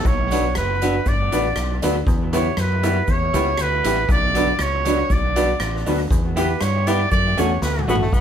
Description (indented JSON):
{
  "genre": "ska",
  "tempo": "119 BPM",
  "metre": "4/4",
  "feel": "straight",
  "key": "B minor",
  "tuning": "A4 = 439 Hz",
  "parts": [
    { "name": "warm trumpet", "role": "melody", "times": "0.0-7.9 s", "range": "B4 to D5", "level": "-22 LUFS", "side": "right 2 dB", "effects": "none" },
    { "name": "fingered electric bass", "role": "bass", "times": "0.0-8.2 s", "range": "F#1 to G2", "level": "-23 LUFS", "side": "equal", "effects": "none" },
    { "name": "street-band drum kit", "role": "drums", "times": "0.0-8.2 s", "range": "hi-hat, kick drum, rim click, snare drum, toms", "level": "-23 LUFS", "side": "equal", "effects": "none" },
    { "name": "cabasa", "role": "percussion", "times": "0.1-8.2 s", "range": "none", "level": "-40 LUFS", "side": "left 7 dB", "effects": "none" },
    { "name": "electric guitar through a small old amp", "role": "accompaniment", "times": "0.3-8.0 s", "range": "F#3 to G4", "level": "-26 LUFS", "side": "right 1 dB", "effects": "dub echo" },
    { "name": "dark upright piano", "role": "stabs", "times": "0.3-8.0 s", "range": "C#4 to B4", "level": "-25 LUFS", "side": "equal", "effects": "none" },
    { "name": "edgy tenor saxophone", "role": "melody", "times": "7.9-8.2 s", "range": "A3 to B3", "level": "-24 LUFS", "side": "left 1 dB", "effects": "none" }
  ],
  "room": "moderate studio reverb, RT60 0.5 s",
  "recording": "band playing live in one room",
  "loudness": "-17 LUFS",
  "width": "side -8 dB against mid",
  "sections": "0.0-8.1 A section",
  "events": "trumpet solo 0.0-8.1; drum fill 7.6-8.1",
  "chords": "0.1 Bm; 2.1 Em; 4.1 Bm; 6.1 Em; 7.1 F#m"
}